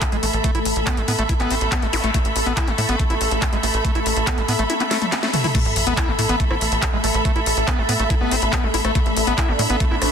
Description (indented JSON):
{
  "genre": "psychedelic trance",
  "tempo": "141 BPM",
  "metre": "4/4",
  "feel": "straight",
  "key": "unclear",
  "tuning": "A4 = 440 Hz",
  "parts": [
    { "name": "bubbling stepped-filter texture", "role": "sustained chords", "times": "0.0-10.1 s", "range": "A3 to A4", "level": "-25 LUFS", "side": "equal", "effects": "chorus, built-in reverb, sidechain pumping" },
    { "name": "drum and bass drum kit", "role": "drums", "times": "0.0-10.1 s", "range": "crash cymbal, handclaps, hi-hat, rim click, snare drum, toms", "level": "-24 LUFS", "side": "left 1 dB", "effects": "none" },
    { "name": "electronic kick drum", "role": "drums", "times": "0.0-9.9 s", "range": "none", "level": "-21 LUFS", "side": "equal", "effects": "none" },
    { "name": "clear studio string section", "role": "texture", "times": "0.0-10.1 s", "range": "A4 to B5", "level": "-25 LUFS", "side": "right 1 dB", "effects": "sidechain pumping" },
    { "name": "overdriven acid bass", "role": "riff", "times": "0.1-10.0 s", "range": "G#3 to E4", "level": "-26 LUFS", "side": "moving between left 8 dB and right 8 dB", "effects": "auto-pan, sidechain pumping, dub echo" },
    { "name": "tight sequencer bass", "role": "bass", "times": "0.1-10.1 s", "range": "A1 to A2", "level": "-24 LUFS", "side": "equal", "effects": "none" },
    { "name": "zap and sub drop", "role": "sound effects", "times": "1.9-2.0, 5.5-7.2 s", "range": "none", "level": "-30 LUFS", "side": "equal", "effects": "none" }
  ],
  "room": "light reverb",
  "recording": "dense, heavily limited modern master",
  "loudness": "-17 LUFS",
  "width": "side -7 dB against mid",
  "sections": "0.0-5.5 A section; 5.5-10.1 B section",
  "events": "kick drops out 4.7-5.5; drum fill 4.7-5.5; band accent 5.2; drop 5.5-10.1; impact 5.5-7.2",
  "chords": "0.0 A5"
}